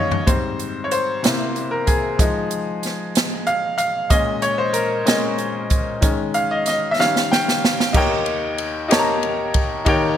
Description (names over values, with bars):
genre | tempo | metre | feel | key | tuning
slow gospel | 63 BPM (dotted quarters) | 6/8 | straight | unclear | A4 = 440 Hz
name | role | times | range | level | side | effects
bright upright piano | accompaniment | 0.0-10.2 s | Eb2 to Bb5 | -19 LUFS | left 2 dB | none
swinging big-band drum kit | drums | 0.1-10.0 s | crash cymbal, hi-hat, kick drum, ride cymbal, snare drum, toms | -20 LUFS | right 1 dB | none
room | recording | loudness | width
light reverb, studio reverb | bright 1980s-style digital production | -17 LUFS | side -10 dB against mid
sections
0.0-7.9 A section; 7.9-10.2 B section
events
drum fill 0.0, 7.0-7.9; upright piano solo 0.0-7.9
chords
0.3 Abmaj7; 1.2 C7; 2.2 Fm7; 4.1 Bbm7; 6.0 Eb7sus4; 7.0 Eb7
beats
| 0.28 1.24 | 2.19 3.15 | 4.11 5.07 | 6.03 6.99 | 7.95 8.91 | 9.87